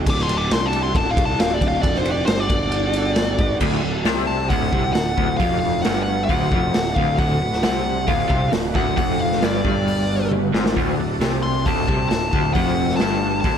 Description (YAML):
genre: blues rock power trio and southern rock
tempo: 134 BPM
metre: 4/4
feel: straight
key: D mixolydian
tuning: A4 = 440 Hz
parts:
  - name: overdriven tonewheel organ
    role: sustained chords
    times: 0.0-13.6 s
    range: D4 to C5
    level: -30 LUFS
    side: right 4 dB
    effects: chorus vibrato, slow rotary speaker
  - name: fuzz picked electric bass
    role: bass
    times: 0.0-13.6 s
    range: D1 to C2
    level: -25 LUFS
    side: equal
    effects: overdrive
  - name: nasal lead guitar with a parked wah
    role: melody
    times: 0.1-13.6 s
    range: C5 to D6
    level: -24 LUFS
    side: left 2 dB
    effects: overdrive, slapback echo
  - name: raw garage drum kit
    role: drums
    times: 0.1-13.6 s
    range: crash cymbal, hi-hat, kick drum, ride cymbal, snare drum, toms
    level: -22 LUFS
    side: equal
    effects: none
  - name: crunchy overdriven guitar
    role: riff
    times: 3.6-13.6 s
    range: D2 to C3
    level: -22 LUFS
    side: equal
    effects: tremolo
room: light reverb, small room ambience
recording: none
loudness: -17 LUFS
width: side -8 dB against mid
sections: 0.0-3.6 A section; 3.6-13.6 B section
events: lead electric guitar solo 0.0-3.6; drum fill 10.3-10.8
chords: 0.0 D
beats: | 0.07 0.51 0.96 1.40 | 1.84 2.29 2.73 3.18 | 3.62 4.07 4.51 4.96 | 5.41 5.85 6.30 6.75 | 7.20 7.64 8.09 8.54 | 8.98 9.43 9.88 10.33 | 10.77 11.22 11.67 12.12 | 12.56 13.01 13.46